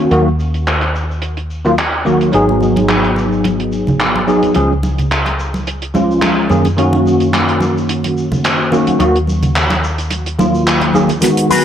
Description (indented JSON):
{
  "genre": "nu-disco, nu disco",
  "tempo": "108 BPM",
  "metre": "4/4",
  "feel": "swing 55% on 16ths",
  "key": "unclear",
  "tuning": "A4 = 436 Hz",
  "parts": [
    { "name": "bell-like tine electric piano", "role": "accompaniment", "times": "0.0-11.6 s", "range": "D#3 to G#4", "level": "-14 LUFS", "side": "equal", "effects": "ensemble chorus, low-pass filter, analog delay" },
    { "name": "hollow-body short-scale fingered electric bass", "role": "bass", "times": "0.0-11.2 s", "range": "G#1 to F#2", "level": "-19 LUFS", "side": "equal", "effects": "none" },
    { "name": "damped 70s drum kit", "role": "drums", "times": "0.1-11.6 s", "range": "handclaps, hi-hat, shaker, snare drum", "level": "-18 LUFS", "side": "equal", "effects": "low-pass filter on hats, low-pass filter on snare, low-pass filter on perc, low-pass filter on room" },
    { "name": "congas", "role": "percussion", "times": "2.5-11.6 s", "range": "none", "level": "-21 LUFS", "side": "right 1 dB", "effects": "none" },
    { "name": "electric guitar with an envelope filter", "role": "riff", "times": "11.5-11.6 s", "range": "F#4 to B4", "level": "-11 LUFS", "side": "left 4 dB", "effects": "analog chorus, low-pass filter" }
  ],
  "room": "little or no reverb",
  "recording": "dry, gritty hardware recording",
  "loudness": "-12 LUFS",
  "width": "side -9 dB against mid",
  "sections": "0.0-11.2 A section",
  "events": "drum fill 11.2-11.6",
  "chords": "0.1 D#m; 2.3 G#m7; 4.6 C#; 6.5 F#6; 9.0 D#m"
}